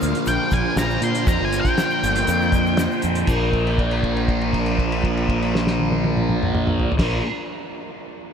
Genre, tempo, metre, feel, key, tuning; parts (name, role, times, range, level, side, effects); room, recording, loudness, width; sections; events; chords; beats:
psychedelic rock; 120 BPM; 4/4; straight; Bb major; A4 = 438 Hz
combo organ; sustained chords; 0.0-7.2 s; D3 to C5; -29 LUFS; right 4 dB
thick fuzz guitar; riff; 0.0-7.2 s; Bb2 to Bb3; -24 LUFS; equal; distortion, phaser
fuzz fingered electric bass; bass; 0.0-7.2 s; G1 to Bb2; -24 LUFS; equal; overdrive
cloth-damped thuddy drum kit; drums; 0.0-7.1 s; crash cymbal, hi-hat, kick drum, snare drum, toms; -24 LUFS; equal
egg shaker; percussion; 0.0-3.5 s; -42 LUFS; left 6 dB
octave-fuzz lead guitar; melody; 0.3-2.8 s; G5 to C6; -25 LUFS; left 1 dB; wah, distortion, ping-pong delay
moderate huge ambient reverb, RT60 8.3 s; dreamy mix soaked in reverb; -18 LUFS; side -7 dB against mid
0.0-3.3 A section; 3.3-7.3 B section
lead electric guitar solo 0.0-3.3; held note 3.3-7.0
0.0 Bb
0.28 0.78 | 1.28 1.78 2.28 2.78 | 3.28 3.78 4.28 4.78 | 5.28 5.78 6.29 6.79